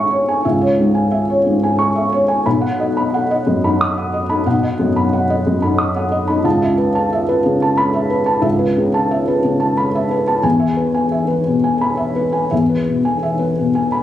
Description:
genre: neoclassical minimalist piano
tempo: 90 BPM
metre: 3/4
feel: rubato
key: unclear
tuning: A4 = 439 Hz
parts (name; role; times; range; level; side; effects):
- felt-muted upright piano; solo; 0.0-14.0 s; B1 to D#6; -14 LUFS; equal; none
room: light reverb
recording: recorded on a phone in the room, club reverb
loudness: -14 LUFS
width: side -12 dB against mid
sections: 0.0-14.0 A section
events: none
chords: 0.0 C#m; 2.5 B; 6.4 Aadd9/C#; 10.4 E

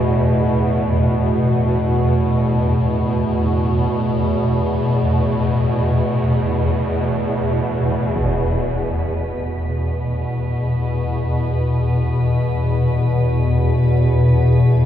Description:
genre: dark ambient drone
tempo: free time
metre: none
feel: none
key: unclear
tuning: A4 = 437 Hz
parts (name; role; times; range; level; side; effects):
- quartz singing bowl; arpeggios; 0.0-4.8 s; A2 to F#4; -24 LUFS; right 2 dB; tape echo
- swarming drone; drone; 0.0-14.9 s; E2 to B2; -16 LUFS; left 1 dB; built-in reverb
- impact; percussion; 8.2-8.4 s; none; -30 LUFS; equal; low-pass filter on sfx
- icy glass pad; texture; 8.7-14.9 s; B4; -34 LUFS; right 4 dB; chorus, built-in reverb
room: wet cathedral reverb, RT60 5.3 s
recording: dark, warm production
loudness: -16 LUFS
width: side -10 dB against mid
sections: 0.0-8.2 A section; 8.2-14.9 B section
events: none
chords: 0.0 E5

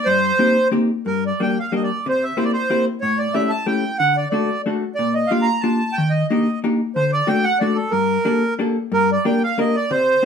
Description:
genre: musette waltz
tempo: 183 BPM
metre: 3/4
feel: rubato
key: G minor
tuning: A4 = 438 Hz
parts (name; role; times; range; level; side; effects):
- accordion; melody; 0.0-10.3 s; A4 to Bb5; -19 LUFS; right 2 dB; none
- vintage hollow-body jazz guitar; accompaniment; 0.1-10.3 s; G2 to Bb4; -20 LUFS; left 2 dB; none
room: wet studio reverb, RT60 0.6 s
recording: heard from further back in the room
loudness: -17 LUFS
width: side -7 dB against mid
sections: 0.0-1.1 A section; 1.1-8.9 B section; 8.9-10.3 B section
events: none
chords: 0.0 Cm7; 1.1 Gm; 2.1 C7; 3.0 A7; 4.0 D; 5.0 Bb6; 6.0 Ebmaj7; 7.0 D; 7.9 Gmadd9; 8.9 Gm

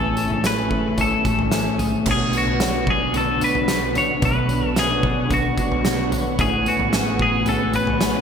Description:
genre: dream pop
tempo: 111 BPM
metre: 4/4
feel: straight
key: unclear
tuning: A4 = 440 Hz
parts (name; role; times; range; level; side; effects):
- clean electric guitar; melody; 0.0-8.2 s; F#4 to C#5; -23 LUFS; left 2 dB; lush chorus, ping-pong delay
- clean electric guitar; accompaniment; 0.0-8.2 s; A2 to C#5; -29 LUFS; right 6 dB; tremolo, analog chorus
- string machine, cellos; sustained chords; 0.0-8.2 s; D4 to C#6; -27 LUFS; right 2 dB; ensemble chorus
- twelve-string electric guitar; arpeggios; 0.0-8.2 s; A2 to C#5; -25 LUFS; left 2 dB; wide subtle chorus, ping-pong delay
- vintage muted picked electric bass; bass; 0.0-8.2 s; A1 to B1; -29 LUFS; equal; none
- oversized low-tuned drum kit; drums; 0.2-8.1 s; crash cymbal, kick drum, snare drum, tambourine, toms; -23 LUFS; equal; gated reverb
room: moderate plate reverb, RT60 1.6 s, studio ambience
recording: bright 1980s-style digital production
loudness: -18 LUFS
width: side -7 dB against mid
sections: 0.0-2.1 A section; 2.1-8.2 A section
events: none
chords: 0.0 Amaj7; 2.1 Bm9; 6.4 Amaj9

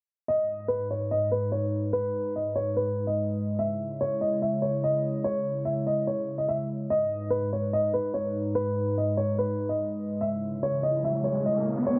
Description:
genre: hip hop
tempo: 145 BPM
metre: 4/4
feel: half-time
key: G# minor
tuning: A4 = 441 Hz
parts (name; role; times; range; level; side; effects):
- dark concert grand piano; melody; 0.3-12.0 s; B4 to E5; -30 LUFS; equal; low-pass filter
- hollow soft pad; sustained chords; 0.5-12.0 s; G#2 to C#5; -32 LUFS; equal; chorus
- riser; sound effects; 10.8-12.0 s; none; -34 LUFS; equal; none
room: moderate scoring stage reverb, RT60 1.6 s, small room ambience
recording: dark, warm production, low-pass filter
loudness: -28 LUFS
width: mono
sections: 0.3-12.0 A section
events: filter sweep 0.3-12.0; riser 10.8-12.0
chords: 0.3 G#m; 3.6 C#m; 6.9 G#m; 10.2 C#m

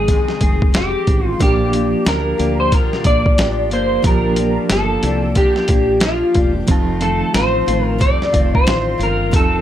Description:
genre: indie pop, bedroom pop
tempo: 91 BPM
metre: 4/4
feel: swing 60% on 16ths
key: Bb major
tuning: A4 = 439 Hz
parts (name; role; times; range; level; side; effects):
- electric guitar through a small old amp; melody; 0.0-9.6 s; F4 to D5; -18 LUFS; equal; ensemble chorus, analog delay
- bright reed electric piano; accompaniment; 0.0-9.6 s; F3 to A5; -24 LUFS; right 5 dB; fast tremolo, cassette tape
- picked steel-string acoustic guitar; accompaniment; 0.0-9.6 s; F2 to Ab4; -22 LUFS; left 3 dB; lush chorus, vibrato effect
- woody fretless electric bass; bass; 0.0-9.6 s; E1 to D2; -22 LUFS; equal; none
- dusty soul sampler-style drum kit; drums; 0.1-9.5 s; hi-hat, kick drum, snare drum; -16 LUFS; equal; none
room: light reverb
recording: none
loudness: -13 LUFS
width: side -11 dB against mid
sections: 0.0-9.6 A section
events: none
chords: 0.0 Fm7; 1.4 Bb6; 6.7 F7

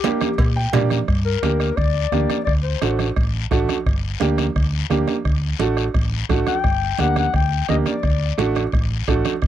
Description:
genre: latin, cumbia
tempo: 172 BPM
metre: 4/4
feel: straight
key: G harmonic minor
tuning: A4 = 440 Hz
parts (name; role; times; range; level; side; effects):
- dark clarinet; second line; 0.0-3.1, 6.5-8.5 s; G4 to G5; -24 LUFS; left 10 dB; none
- clear upright piano; accompaniment; 0.0-9.3 s; A3 to G5; -22 LUFS; right 4 dB; none
- bombo; percussion; 0.0-9.5 s; none; -23 LUFS; right 1 dB; none
- congas; percussion; 0.0-9.5 s; none; -28 LUFS; right 10 dB; none
- cowbell; percussion; 0.0-0.9 s; none; -33 LUFS; right 3 dB; none
- guiro; percussion; 0.0-9.5 s; none; -32 LUFS; left 20 dB; none
- hollow-body short-scale fingered electric bass; bass; 0.4-9.5 s; G1 to Bb2; -22 LUFS; equal; none
room: little or no reverb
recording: dry, close 1970s-style studio recording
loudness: -17 LUFS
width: side -11 dB against mid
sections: 0.0-1.1 A section; 1.1-9.5 B section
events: clarinet solo 0.0-1.1, 1.1-9.5; upright piano fill 0.4-1.1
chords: 0.0 Gm; 2.5 D7; 3.9 Gm; 5.3 D; 6.6 Gm; 8.0 D

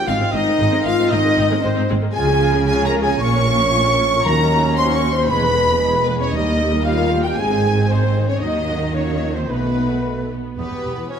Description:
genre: cinematic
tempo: 115 BPM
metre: 4/4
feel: straight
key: unclear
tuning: A4 = 440 Hz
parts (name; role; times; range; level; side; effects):
- warm symphonic violin section; melody; 0.0-11.2 s; B4 to Db6; -27 LUFS; left 4 dB; none
- mellow hollow silver concert flute; second line; 0.0-10.3 s; B4 to Db6; -27 LUFS; left 2 dB; none
- dark French horn section; sustained chords; 0.0-11.2 s; G3 to Db5; -22 LUFS; left 1 dB; none
- warm trombone section; sustained chords; 0.0-11.2 s; B2 to Db4; -26 LUFS; right 4 dB; none
- warm trumpet section; stabs; 0.0-11.2 s; B4 to Db6; -24 LUFS; right 1 dB; none
- rich symphonic violin section; second line; 0.1-11.2 s; B3 to Db6; -29 LUFS; left 5 dB; none
- warm symphonic viola section; accompaniment; 0.1-11.2 s; Eb3 to C5; -27 LUFS; equal; none
- warm studio double bass section; bass; 0.1-10.9 s; E1 to Eb2; -23 LUFS; right 3 dB; none
- warm symphonic cello section; bass; 0.1-11.0 s; Eb2 to Eb3; -24 LUFS; right 2 dB; none
- timpani; percussion; 4.3-5.0 s; Eb3; -26 LUFS; left 1 dB; none
- mellow cor anglais; second line; 10.6-11.2 s; B3 to C#4; -30 LUFS; right 3 dB; none
room: wet scoring stage reverb, RT60 2.1 s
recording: none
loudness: -15 LUFS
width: side -7 dB against mid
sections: 0.0-10.6 A section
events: none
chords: 0.1 Ab; 2.2 Db; 3.2 Bbm; 4.3 Ebm7; 5.3 E; 6.3 Eb; 7.4 Ab; 8.4 Ebm; 9.5 B7; 10.6 Em

